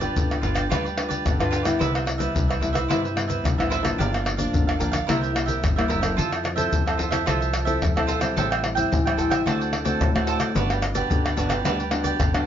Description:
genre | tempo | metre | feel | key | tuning
samba and choro | 110 BPM | 4/4 | straight | G major | A4 = 439 Hz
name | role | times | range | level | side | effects
cavaquinho | accompaniment | 0.0-12.5 s | E4 to G5 | -27 LUFS | right 7 dB | none
nylon-string guitar | accompaniment | 0.0-12.5 s | G2 to B4 | -26 LUFS | left 2 dB | none
upright bass | bass | 0.0-12.5 s | F#1 to D3 | -29 LUFS | right 1 dB | none
tube shaker, surdo, pandeiro and tamborim | percussion | 0.0-12.5 s | none | -24 LUFS | left 2 dB | none
room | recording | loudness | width
light reverb | nothing above 7.4 kHz | -20 LUFS | side -9 dB against mid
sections
0.0-12.5 A section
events
none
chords
0.0 G7; 1.8 Cmaj7; 4.0 Gm7; 5.1 C7; 6.2 Fmaj7; 8.4 Am7; 9.5 D7; 10.6 Gmaj7

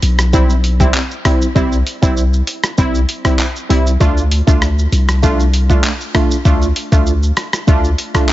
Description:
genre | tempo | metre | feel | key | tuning
dancehall | 98 BPM | 4/4 | straight | C major | A4 = 437 Hz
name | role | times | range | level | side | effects
punchy sub bass | bass | 0.0-7.9 s | B1 to D2 | -14 LUFS | equal | none
boom bap sampler-style drum kit | drums | 0.0-8.3 s | handclaps, hi-hat, kick drum, rim click, shaker | -15 LUFS | equal | none
synth brass stab | accompaniment | 0.3-8.3 s | G3 to F4 | -18 LUFS | right 1 dB | chorus
room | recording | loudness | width
little or no reverb | heavily compressed radio sound, multiband compression, nothing above 7.7 kHz | -12 LUFS | side -15 dB against mid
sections
0.0-8.3 A section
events
none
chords
0.0 C; 4.0 Dm

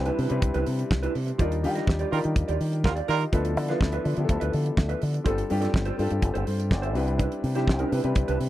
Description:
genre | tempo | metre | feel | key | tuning
disco | 124 BPM | 4/4 | straight | unclear | A4 = 440 Hz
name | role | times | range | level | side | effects
warm baby grand piano | accompaniment | 0.0-8.5 s | F3 to F5 | -30 LUFS | left 3 dB | none
fingered electric bass with an envelope filter | bass | 0.0-8.5 s | G1 to Eb3 | -27 LUFS | equal | none
mellow electric guitar | accompaniment | 0.1-8.4 s | D4 to F5 | -33 LUFS | right 6 dB | lush chorus
damped 70s drum kit | drums | 0.1-8.5 s | hi-hat, kick drum, snare drum | -27 LUFS | equal | none
clear horn section | stabs | 2.1-3.2 s | G3 to Bb4 | -26 LUFS | right 8 dB | tube saturation
room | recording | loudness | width
little or no reverb | dry, close 1970s-style studio recording | -23 LUFS | side -14 dB against mid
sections
0.0-8.5 A section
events
band accent 1.4-3.3; grand piano fill 6.2-7.2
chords
0.0 Cmaj9; 1.4 Ebmaj9; 3.3 Dm69; 5.3 G9sus4; 6.9 Cmaj9

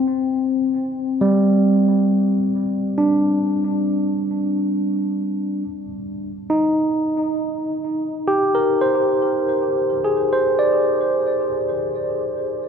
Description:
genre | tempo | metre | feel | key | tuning
ambient | 68 BPM | 4/4 | straight | unclear | A4 = 440 Hz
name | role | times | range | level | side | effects
overdriven tine electric piano | solo | 0.0-12.7 s | G3 to D5 | -18 LUFS | equal | ping-pong delay
room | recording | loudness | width
moderate cathedral reverb, RT60 5.3 s | none | -17 LUFS | side -7 dB against mid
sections
0.0-12.7 A section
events
none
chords
0.0 Gsus4; 5.6 Bb7sus4

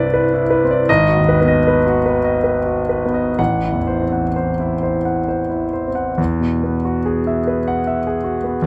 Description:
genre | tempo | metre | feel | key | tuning
classical, impressionist solo piano | 60-80 BPM | 3/4 | rubato | E major | A4 = 440 Hz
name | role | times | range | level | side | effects
warm concert grand piano | solo | 0.0-8.7 s | G#1 to F#5 | -18 LUFS | equal | none
room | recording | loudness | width
little or no reverb | close, detailed microphones | -18 LUFS | mono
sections
0.0-6.2 A section; 6.2-8.7 B section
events
none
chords
0.0 Cmaj9; 0.9 G#m7; 3.4 Am6; 6.2 Eadd9

